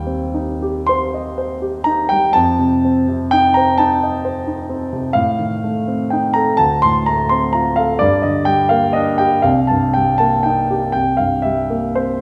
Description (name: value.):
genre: classical, romantic nocturne for solo piano.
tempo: 35-45 BPM (dotted quarters).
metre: 12/8.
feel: rubato.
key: unclear.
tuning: A4 = 439 Hz.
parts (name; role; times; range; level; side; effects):
warm grand piano; solo; 0.0-12.2 s; C2 to C6; -17 LUFS; equal; none.
room: moderate recital hall reverb, RT60 1.6 s.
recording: none.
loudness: -16 LUFS.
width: mono.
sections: 0.0-12.2 A section.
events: none.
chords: 0.0 Cm/Eb; 2.4 F7; 5.2 Adim; 6.6 Dm7; 8.0 Gm; 9.5 Cm7; 10.9 C5.